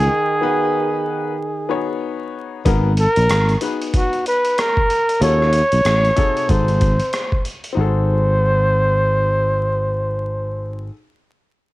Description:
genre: hip hop, jazz-hop.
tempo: 94 BPM.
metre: 4/4.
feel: swing 60% on 16ths.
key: unclear.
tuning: A4 = 437 Hz.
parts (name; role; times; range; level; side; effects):
breathy flugelhorn; melody; 0.0-10.9 s; F#4 to C#5; -18 LUFS; equal; none.
clear trombone; second line; 0.0-2.0 s; D#3; -27 LUFS; right 7 dB; cassette tape, analog delay.
sustaining fretless electric bass; bass; 0.0-10.9 s; G#1 to D#2; -18 LUFS; equal; none.
clear upright piano; accompaniment; 0.4-10.9 s; B#2 to C#5; -25 LUFS; left 6 dB; cassette tape.
boom bap sampler-style drum kit; drums; 2.7-7.8 s; hi-hat, kick drum, rim click; -22 LUFS; equal; cassette tape.
room: light reverb.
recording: home recording on cassette, vinyl crackle.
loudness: -16 LUFS.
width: side -18 dB against mid.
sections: 0.0-2.7 A section; 2.7-7.8 B section; 7.8-10.3 C section.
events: break 0.1-2.7.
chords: 0.0 G#m7; 2.7 G#m9; 5.2 D#m7b5; 6.5 G#7b9.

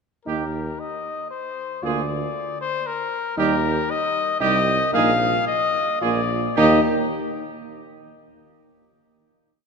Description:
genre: classical, brass quintet.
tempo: 105-118 BPM.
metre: 3/4.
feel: rubato.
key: Eb major.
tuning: A4 = 439 Hz.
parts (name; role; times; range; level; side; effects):
clear cornet; melody; 0.3-6.8 s; Bb4 to F5; -23 LUFS; left 5 dB; none.
clear trumpet; second line; 0.3-6.8 s; G4 to Ab4; -28 LUFS; right 8 dB; none.
mellow euphonium; accompaniment; 0.3-6.8 s; G3 to Bb3; -28 LUFS; right 5 dB; none.
warm French horn; accompaniment; 0.3-6.8 s; Eb4 to F4; -28 LUFS; left 2 dB; none.
clear tuba; bass; 0.3-6.8 s; Bb1 to Eb2; -26 LUFS; right 3 dB; none.
room: wet church reverb, RT60 2.7 s.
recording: none.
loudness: -20 LUFS.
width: side -5 dB against mid.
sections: 0.3-6.6 A section; 6.6-8.2 final chord.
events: none.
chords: 0.3 Eb5; 1.8 Bb/D; 3.4 Eb; 4.4 Cm; 4.9 Bbsus4; 6.0 Bb7; 6.6 Eb5.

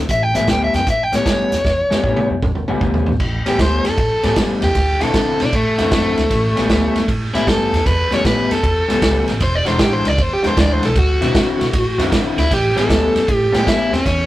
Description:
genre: electric blues shuffle.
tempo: 155 BPM.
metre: 4/4.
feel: swing 66% on 8ths.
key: A mixolydian.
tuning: A4 = 441 Hz.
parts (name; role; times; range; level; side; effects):
upright bass; bass; 0.0-14.3 s; E1 to D3; -21 LUFS; right 1 dB; none.
overdriven electric guitar; melody; 0.1-14.3 s; A3 to G5; -18 LUFS; equal; spring reverb.
vintage drum kit; drums; 0.1-14.2 s; crash cymbal, hi-hat, kick drum, ride cymbal, snare drum, toms; -19 LUFS; right 1 dB; none.
electric guitar through a small old amp; riff; 0.3-14.0 s; A2 to F#4; -21 LUFS; left 3 dB; none.
room: moderate studio reverb, RT60 0.6 s.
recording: rough rehearsal-room recording, tube saturation.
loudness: -14 LUFS.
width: side -15 dB against mid.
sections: 0.0-3.2 A section; 3.2-14.3 B section.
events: drum fill 1.6-3.2; overdriven electric guitar solo 3.2-14.3.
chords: 0.1 A9; 4.8 D9; 6.3 A9; 9.4 E9; 11.0 D9; 12.5 A9.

